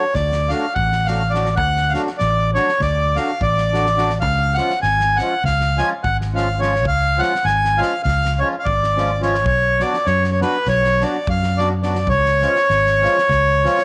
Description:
balkan folk, Balkan wedding band; 206 BPM (eighths); 9/8; straight; C# phrygian dominant; A4 = 440 Hz
accordion; melody; 0.0-13.8 s; B4 to G#5; -20 LUFS; equal
accordion; accompaniment; 0.0-13.8 s; E#3 to F#4; -28 LUFS; equal; light tremolo tuning
loose indie drum kit; percussion; 0.1-13.8 s; kick drum, snare drum; -32 LUFS; equal
fingered electric bass; bass; 0.2-13.7 s; G#1 to F#2; -23 LUFS; equal; tube saturation
light reverb, small room ambience; -18 LUFS; mono
0.0-13.8 A section
0.0 D; 4.2 C#; 9.5 Bm; 12.1 C#

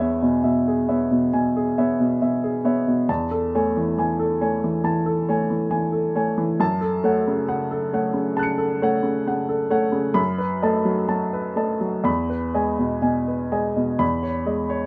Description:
neoclassical minimalist piano; 67 BPM; 4/4; rubato; E major; A4 = 441 Hz
clear upright piano; solo; 0.0-14.9 s; E2 to C#7; -22 LUFS; equal
light reverb; -22 LUFS; mono
0.0-14.0 A section
0.0 E6; 3.1 Amaj7/E; 6.6 F#m; 10.2 B7/F#; 12.1 Emaj7; 14.0 E6

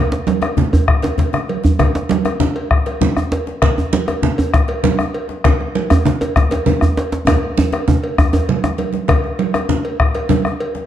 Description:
west african traditional, West African drum ensemble; 132 BPM (dotted quarters); 12/8; straight
congas; percussion; 0.1-10.9 s; -20 LUFS; right 7 dB
djembe; percussion; 0.1-8.8 s; -17 LUFS; right 1 dB
bombo; percussion; 0.3-10.6 s; -18 LUFS; left 2 dB
cowbell; percussion; 0.3-10.7 s; -24 LUFS; equal
djembe; percussion; 0.4-10.9 s; -22 LUFS; left 4 dB
moderate recital hall reverb, RT60 1.6 s; dark, warm production; -14 LUFS; side -11 dB against mid
0.0-9.1 A section; 9.1-10.9 B section
drum fill 1.0-1.8, 7.3-9.1

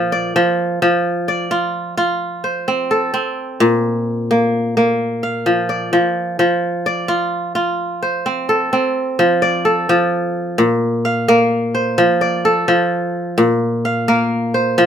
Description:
west african traditional; 86 BPM (dotted quarters); 12/8; straight; F major; A4 = 440 Hz
kora; solo; 0.0-14.9 s; Bb2 to F5; -15 LUFS; equal
light reverb; minimal, uncompressed stereo recording; -15 LUFS; side -8 dB against mid
0.0-9.2 A section; 9.2-14.9 B section
0.0 Bb; 0.8 F; 3.6 Bb; 6.4 F; 10.6 Bb5; 12.0 F; 13.4 Bb5

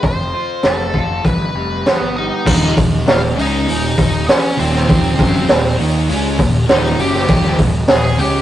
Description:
quiet-loud alternative rock; 99 BPM; 4/4; straight; A4 = 440 Hz
octave-fuzz lead guitar; melody; 0.0-8.4 s; B3 to Ab5; -21 LUFS; equal; distortion
electric guitar through a small old amp; arpeggios; 0.0-2.5 s; F2 to F4; -24 LUFS; equal; phaser
fuzz fingered electric bass; bass; 0.0-8.4 s; Eb1 to Eb2; -21 LUFS; equal; overdrive
raw garage drum kit; drums; 0.0-8.3 s; crash cymbal, hi-hat, kick drum, snare drum; -15 LUFS; equal
heavy high-gain guitar; riff; 2.5-8.4 s; Eb2 to Eb4; -26 LUFS; left 1 dB
overdriven electric guitar; riff; 2.5-8.4 s; Eb2 to Eb4; -22 LUFS; left 4 dB
thick fuzz guitar; riff; 2.5-8.4 s; Eb2 to Eb4; -21 LUFS; right 3 dB; distortion
light reverb; rough rehearsal-room recording, tube saturation, nothing above 11.0 kHz; -12 LUFS; side -12 dB against mid
0.0-2.5 A section; 2.5-8.4 B section
0.0 F; 1.2 G7; 2.5 Eb

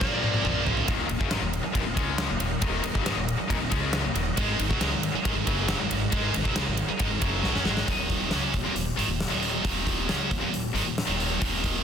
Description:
hard rock; 137 BPM; 4/4; straight; A4 = 441 Hz
smooth overdriven lead guitar; melody; 0.0-0.6 s; D5; -33 LUFS; left 1 dB; slapback echo
overdriven tonewheel organ; sustained chords; 0.0-7.9 s; Ab3 to F5; -38 LUFS; equal; chorus vibrato, fast rotary speaker
heavy high-gain guitar; riff; 0.0-0.9, 4.4-11.8 s; Eb2 to Db4; -29 LUFS; right 12 dB; distortion
scooped high-gain guitar; riff; 0.0-7.9 s; Eb2 to Db4; -32 LUFS; left 1 dB; distortion
tight distorted guitar; riff; 0.0-11.8 s; Eb2 to Db4; -31 LUFS; left 10 dB; distortion
upright bass; bass; 0.0-11.8 s; Eb1 to Gb2; -32 LUFS; equal
huge arena drum kit; drums; 0.0-11.7 s; hi-hat, kick drum, ride cymbal, snare drum, toms; -28 LUFS; equal
light reverb, small room ambience; dense, heavily limited modern master; -24 LUFS; side -8 dB against mid
0.9-7.9 A section; 7.9-11.8 B section
drum fill 0.0-0.9, 7.4-7.9
0.0 Bb; 0.9 Eb5; 4.4 Ab5; 7.9 Eb5

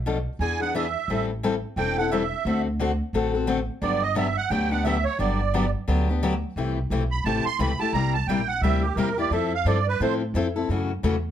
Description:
acoustic string swing (jazz manouche); 175 BPM; 4/4; swing 60% on 8ths; G major; A4 = 440 Hz
upright bass; bass; 0.0-11.3 s; E1 to A2; -26 LUFS; right 1 dB
picked steel-string acoustic guitar; accompaniment; 0.1-11.2 s; B2 to A4; -26 LUFS; left 4 dB
musette accordion; second line; 0.4-10.1 s; G4 to C6; -26 LUFS; right 8 dB
light reverb; -22 LUFS; side -10 dB against mid
0.0-6.6 A section; 6.6-11.3 A section
accordion solo 0.0-11.3
0.4 E7; 1.1 Am7; 2.4 D7; 3.8 Gmaj7; 6.6 C6; 7.9 C7; 9.3 Fmaj7; 10.7 F#m7

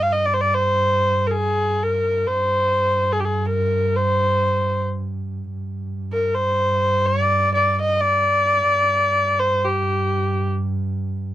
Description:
Persian modal ensemble; free time; G dastgah shur; A4 = 436 Hz
rich kamancheh; melody; 0.0-10.5 s; G4 to F5; -18 LUFS; left 1 dB
dark double bass; drone; 0.0-11.3 s; G2; -24 LUFS; right 2 dB; stereo widening
little or no reverb; dry, close 1970s-style studio recording; -18 LUFS; side -13 dB against mid
0.0-11.3 A section

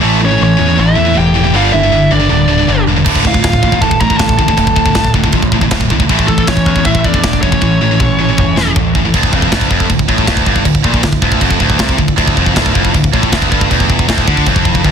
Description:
heavy metal; 158 BPM; 4/4; straight; D harmonic minor; A4 = 441 Hz
chorused pulse-width pad; sustained chords; 0.0-14.9 s; D3 to E5; -26 LUFS; right 1 dB
heavy high-gain guitar; riff; 0.0-14.9 s; D2 to A3; -16 LUFS; right 13 dB; distortion
high-gain distorted guitar; riff; 0.0-14.9 s; D2 to A3; -16 LUFS; left 12 dB; distortion
growling picked electric bass; bass; 0.0-14.9 s; D1 to E2; -16 LUFS; equal; overdrive
high-gain lead guitar; melody; 0.2-8.7 s; A4 to Bb5; -16 LUFS; equal; distortion, tape echo
high-gain lead guitar; second line; 0.2-8.7 s; A3 to Bb4; -22 LUFS; right 4 dB; distortion, tape echo
tight metal drum kit; drums; 3.1-14.9 s; china cymbal, crash cymbal, kick drum, snare drum, toms; -14 LUFS; equal
light reverb; dense, heavily limited modern master; -9 LUFS; side -7 dB against mid
0.0-9.1 A section; 9.1-14.9 B section
drum fill 7.6-9.1
0.0 A; 1.5 Gm; 3.1 Dm; 6.1 A; 9.1 Dm

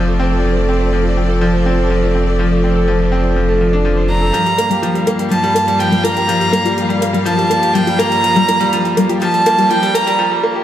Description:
piano and strings electronica; 123 BPM; 4/4; straight; G minor; A4 = 438 Hz
rich studio string section; sustained chords; 0.0-10.2 s; G2 to F5; -21 LUFS; equal; low-pass filter
bright concert grand piano; riff; 0.0-10.6 s; F3 to C5; -16 LUFS; left 1 dB; digital delay
warm sub bass; bass; 0.0-4.3 s; F1; -17 LUFS; equal
warm violin; melody; 4.1-10.2 s; G5 to Bb5; -15 LUFS; right 2 dB
soft round pluck; arpeggios; 4.3-10.1 s; G3 to G5; -20 LUFS; left 3 dB; lush chorus, digital delay
electronic hi-hat; drums; 4.3-10.2 s; -30 LUFS; left 2 dB
wet echo chamber reverb, RT60 1.6 s, studio ambience; high-pass filter; -12 LUFS; side -11 dB against mid
0.0-4.3 A section; 4.3-10.6 B section
build-up 4.3-10.6; filter sweep on synth arpeggio sound 4.3-10.6; break 10.2-10.6
0.0 Dm7/F; 4.3 Gm7

